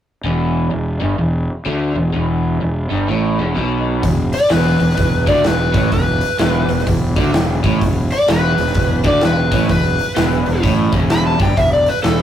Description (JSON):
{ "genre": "blues rock power trio and southern rock", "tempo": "127 BPM", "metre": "4/4", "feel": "swing 62% on 8ths", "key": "E minor", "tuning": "A4 = 440 Hz", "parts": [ { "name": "crunchy overdriven guitar", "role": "riff", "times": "0.2-12.2 s", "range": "E2 to D3", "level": "-19 LUFS", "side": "right 1 dB", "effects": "spring reverb" }, { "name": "fuzz fingered electric bass", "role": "bass", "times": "0.2-12.2 s", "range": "E1 to D2", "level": "-19 LUFS", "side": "equal", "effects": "overdrive" }, { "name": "big rock drum kit", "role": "drums", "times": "4.0-12.2 s", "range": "hi-hat, kick drum, snare drum", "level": "-18 LUFS", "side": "equal", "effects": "none" }, { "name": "overdriven slide guitar", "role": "melody", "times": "4.3-12.2 s", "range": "A4 to B5", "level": "-17 LUFS", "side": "left 1 dB", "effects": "none" } ], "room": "wet booth ambience, RT60 0.2 s", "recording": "rough rehearsal-room recording, warm saturation", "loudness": "-14 LUFS", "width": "side -10 dB against mid", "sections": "0.2-4.0 A section; 4.0-12.2 B section", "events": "none", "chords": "0.2 Em; 4.0 E5", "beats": "| 0.24 0.72 1.20 1.67 | 2.15 2.62 3.10 3.57 | 4.04 4.52 4.99 5.46 | 5.93 6.40 6.88 7.35 | 7.82 8.29 8.76 9.23 | 9.70 10.17 10.64 11.11 | 11.58 12.05" }